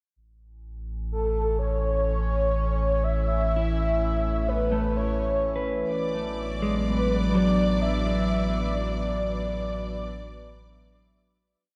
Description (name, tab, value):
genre	ambient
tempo	63 BPM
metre	3/4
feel	straight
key	A major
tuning	A4 = 440 Hz
part	evolving wavetable pad	sustained chords	1.1-11.6 s	E3 to G#5	-35 LUFS	equal	chorus, built-in reverb
part	warm sub bass	bass	0.2-11.6 s	A1	-31 LUFS	equal	none
part	breathy flute-like synth lead	melody	1.1-11.1 s	A4 to E5	-31 LUFS	equal	ensemble chorus, diffuse ambient delay
part	mellow electric guitar	arpeggios	3.6-11.0 s	F#3 to B4	-32 LUFS	equal	subtle chorus, diffuse ambient delay
part	rich studio violin section	texture	5.9-11.6 s	D5 to D6	-38 LUFS	equal	none
room	wet lush hall reverb, RT60 2.7 s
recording	none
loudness	-26 LUFS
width	mono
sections	0.2-11.6 A section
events	fade-in on ambient pad 0.2-11.6; fade-in on clean electric guitar 0.2-11.6; fade-out 7.8-11.6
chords	0.2 Amaj7; 5.9 Bm/A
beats	| 0.17 1.13 2.08 | 3.03 3.98 4.94 | 5.89 6.84 7.79 | 8.74 9.70 10.65